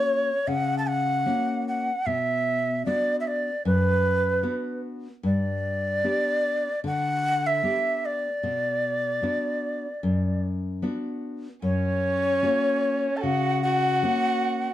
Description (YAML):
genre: andean folk, Andean ensemble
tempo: 75 BPM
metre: 4/4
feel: straight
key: B minor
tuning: A4 = 440 Hz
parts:
  - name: bright reedy large quena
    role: melody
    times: 0.0-14.7 s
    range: B4 to A5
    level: -25 LUFS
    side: equal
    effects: none
  - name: nylon-string guitar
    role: accompaniment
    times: 0.0-14.7 s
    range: F#2 to G4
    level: -27 LUFS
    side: left 2 dB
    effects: none
  - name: rich violin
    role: second line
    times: 11.6-14.7 s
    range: C#4 to A4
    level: -28 LUFS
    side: right 4 dB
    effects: none
room: wet studio reverb, RT60 0.6 s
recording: dark, warm production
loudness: -23 LUFS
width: side -12 dB against mid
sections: 0.0-14.7 A section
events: none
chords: 0.0 F#; 2.1 Bm; 5.2 G; 8.4 Bm; 11.6 F#